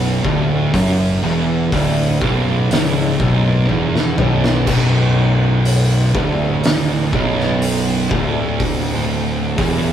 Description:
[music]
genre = stoner and doom metal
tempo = 61 BPM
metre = 4/4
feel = straight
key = B minor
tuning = A4 = 440 Hz
[part]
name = overdriven electric guitar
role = riff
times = 0.0-9.9 s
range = B1 to F#2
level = -23 LUFS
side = equal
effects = none
[part]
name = thick fuzz guitar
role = riff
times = 0.0-9.9 s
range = B1 to F#2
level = -21 LUFS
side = left 4 dB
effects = distortion
[part]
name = thick fuzz guitar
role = riff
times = 0.0-9.9 s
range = B1 to F#2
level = -18 LUFS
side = right 3 dB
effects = distortion
[part]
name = fuzz fingered electric bass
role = bass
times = 0.0-9.9 s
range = B0 to F#1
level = -24 LUFS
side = equal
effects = overdrive
[part]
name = oversized low-tuned drum kit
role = drums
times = 0.2-9.8 s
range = crash cymbal, hi-hat, kick drum, snare drum, toms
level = -20 LUFS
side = equal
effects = none
[sound]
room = moderate studio ambience, RT60 0.5 s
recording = rough rehearsal-room recording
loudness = -14 LUFS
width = side -9 dB against mid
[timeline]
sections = 0.0-4.7 A section; 4.7-9.9 A section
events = drum fill 3.7-4.7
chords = 0.0 Bm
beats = | 0.73 1.72 2.70 3.69 | 4.67 5.65 6.63 7.62 | 8.60 9.58

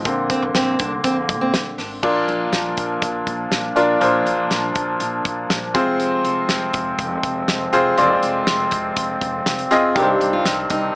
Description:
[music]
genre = piano-driven pop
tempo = 121 BPM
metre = 4/4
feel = straight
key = unclear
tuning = A4 = 439 Hz
[part]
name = bright upright piano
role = accompaniment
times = 0.0-11.0 s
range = G2 to Eb5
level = -19 LUFS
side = left 1 dB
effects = none
[part]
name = warm woodwind section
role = sustained chords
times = 0.0-11.0 s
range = C3 to D4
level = -26 LUFS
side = equal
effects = none
[part]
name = upright bass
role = bass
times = 0.0-10.9 s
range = F1 to Bb2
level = -31 LUFS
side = equal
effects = none
[part]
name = loose indie drum kit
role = drums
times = 0.1-10.8 s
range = crash cymbal, hi-hat, kick drum, snare drum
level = -23 LUFS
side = equal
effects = none
[part]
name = fingerpicked steel-string acoustic guitar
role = riff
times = 0.3-1.9, 10.0-10.9 s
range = C4 to G4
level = -22 LUFS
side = right 1 dB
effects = none
[sound]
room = light reverb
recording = small speaker sound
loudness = -17 LUFS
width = side -27 dB against mid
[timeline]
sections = 0.0-2.0 A section; 2.0-11.0 B section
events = upright piano solo 0.0-2.0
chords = 0.1 Bbadd9; 2.0 Bb; 5.7 Fm; 10.0 Cmadd9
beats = | 0.05 0.55 1.04 1.54 | 2.03 2.53 3.02 3.52 | 4.01 4.51 5.00 5.50 | 6.00 6.49 6.99 7.48 | 7.98 8.47 8.97 9.46 | 9.96 10.46 10.95

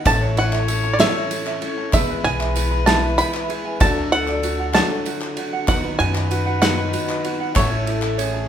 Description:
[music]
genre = indie folk with a building arrangement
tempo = 64 BPM (dotted quarters)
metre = 6/8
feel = straight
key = A major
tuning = A4 = 440 Hz
[part]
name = bluegrass banjo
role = melody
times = 0.0-8.5 s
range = C#5 to B5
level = -21 LUFS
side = right 2 dB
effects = none
[part]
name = clear upright piano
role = accompaniment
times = 0.0-8.5 s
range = A1 to F#5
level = -31 LUFS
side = right 2 dB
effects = none
[part]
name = picked plugged-in twelve-string acoustic guitar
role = accompaniment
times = 0.0-8.5 s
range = A2 to A4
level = -30 LUFS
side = left 5 dB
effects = none
[part]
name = mellow tonewheel organ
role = sustained chords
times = 0.0-8.5 s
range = D3 to B4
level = -33 LUFS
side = left 1 dB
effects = none
[part]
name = tenor ukulele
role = arpeggios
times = 0.0-8.5 s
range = E4 to B5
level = -28 LUFS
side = right 5 dB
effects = none
[part]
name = dark trumpet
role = second line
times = 0.1-8.5 s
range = G#4 to C#5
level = -29 LUFS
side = left 5 dB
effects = none
[part]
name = upright bass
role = bass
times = 0.1-8.5 s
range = E1 to F#2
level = -24 LUFS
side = left 1 dB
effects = none
[part]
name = natural country drum kit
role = drums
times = 0.1-8.3 s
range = kick drum, ride cymbal, snare drum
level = -24 LUFS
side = equal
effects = none
[part]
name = group handclap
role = percussion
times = 0.1-8.3 s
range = none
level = -33 LUFS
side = left 3 dB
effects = none
[part]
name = tambourine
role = percussion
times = 0.1-8.3 s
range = none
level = -37 LUFS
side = right 7 dB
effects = none
[sound]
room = wet large studio reverb, RT60 1.1 s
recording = band playing live in one room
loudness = -17 LUFS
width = side -9 dB against mid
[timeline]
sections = 0.0-8.5 A section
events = none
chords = 0.1 A; 1.9 E; 3.8 D; 5.7 B/D#; 7.6 A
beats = | 0.06 0.99 | 1.93 2.87 | 3.81 4.74 | 5.68 6.62 | 7.56

